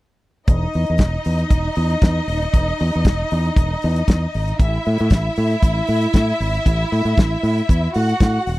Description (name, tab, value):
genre	disco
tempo	116 BPM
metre	4/4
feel	swing 56% on 16ths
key	unclear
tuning	A4 = 440 Hz
part	rich studio string section	second line	0.5-8.6 s	D#4 to F#5	-23 LUFS	equal	slapback echo
part	fingered electric bass	bass	0.5-8.6 s	D#1 to A2	-19 LUFS	equal	none
part	damped 70s drum kit	drums	0.5-8.6 s	hi-hat, kick drum, snare drum	-14 LUFS	equal	none
room	little or no reverb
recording	dry, close 1970s-style studio recording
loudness	-16 LUFS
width	side -18 dB against mid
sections	0.5-8.6 A section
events	none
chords	0.5 Emaj7(no3); 4.6 A5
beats	| 0.48 0.99 1.51 2.02 | 2.54 3.06 3.57 4.09 | 4.60 5.12 5.63 6.15 | 6.66 7.18 7.69 8.21